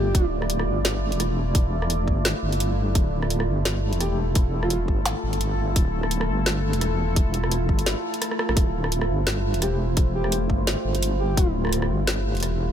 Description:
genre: half-time drum and bass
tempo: 171 BPM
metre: 4/4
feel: swing 56% on 16ths, half-time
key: D minor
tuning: A4 = 443 Hz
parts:
  - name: breathy flute-like synth lead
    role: melody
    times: 0.0-0.2, 4.0-4.8, 9.6-11.5 s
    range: F4 to G4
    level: -32 LUFS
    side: equal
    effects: lush chorus, tape echo
  - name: deep dark ambient pad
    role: sustained chords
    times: 0.0-12.7 s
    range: A3 to D5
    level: -28 LUFS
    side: right 1 dB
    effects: chorus, built-in reverb, sidechain pumping
  - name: deep soft wobble bass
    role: bass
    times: 0.0-12.7 s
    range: D1 to A1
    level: -25 LUFS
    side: equal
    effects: chorus
  - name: drum and bass drum kit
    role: drums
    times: 0.1-12.5 s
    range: hi-hat, rim click, snare drum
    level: -28 LUFS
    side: equal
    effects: none
  - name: electronic kick drum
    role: drums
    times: 0.1-11.5 s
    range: none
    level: -20 LUFS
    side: equal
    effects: none
room: little or no reverb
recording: none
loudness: -21 LUFS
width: side -9 dB against mid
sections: 0.0-12.7 A section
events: drum fill 8.2-8.6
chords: 0.0 Dmadd9

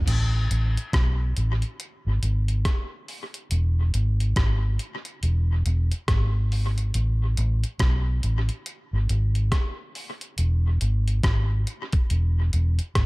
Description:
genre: lovers rock reggae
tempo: 70 BPM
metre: 4/4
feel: swing 61% on 16ths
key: unclear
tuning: A4 = 440 Hz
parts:
  - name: vintage muted fingered electric bass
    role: bass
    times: 0.0-13.1 s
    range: E1 to B1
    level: -21 LUFS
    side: equal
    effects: none
  - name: detuned 8-bit digital drum machine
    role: drums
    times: 0.1-13.1 s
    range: crash cymbal, hi-hat, kick drum, rim click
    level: -27 LUFS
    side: equal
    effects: gated reverb, dub echo
room: little or no reverb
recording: none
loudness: -22 LUFS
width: side -24 dB against mid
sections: 0.1-13.1 A section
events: none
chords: none

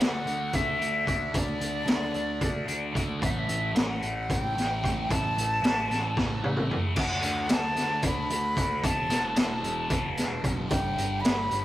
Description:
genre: psychedelic rock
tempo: 224 BPM (eighths)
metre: 7/8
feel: straight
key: unclear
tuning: A4 = 439 Hz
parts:
  - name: breathy bright jazz flute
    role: melody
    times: 0.0-11.6 s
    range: D5 to B5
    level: -30 LUFS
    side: left 1 dB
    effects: tape echo
  - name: thick fuzz guitar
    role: riff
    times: 0.0-11.6 s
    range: E2 to D4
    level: -33 LUFS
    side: equal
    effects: distortion, phaser
  - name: growling picked electric bass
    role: bass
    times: 0.0-11.6 s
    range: E1 to E2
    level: -34 LUFS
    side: equal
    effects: overdrive
  - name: raw garage drum kit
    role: drums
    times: 0.0-11.6 s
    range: crash cymbal, hi-hat, kick drum, snare drum, toms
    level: -28 LUFS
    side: equal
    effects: none
room: light reverb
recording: rough rehearsal-room recording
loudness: -25 LUFS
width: side -14 dB against mid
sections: 0.0-7.0 A section; 7.0-11.6 B section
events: drum fill 6.2-7.0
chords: 0.0 D5; 3.2 A5; 7.0 D; 8.8 E5; 10.7 G

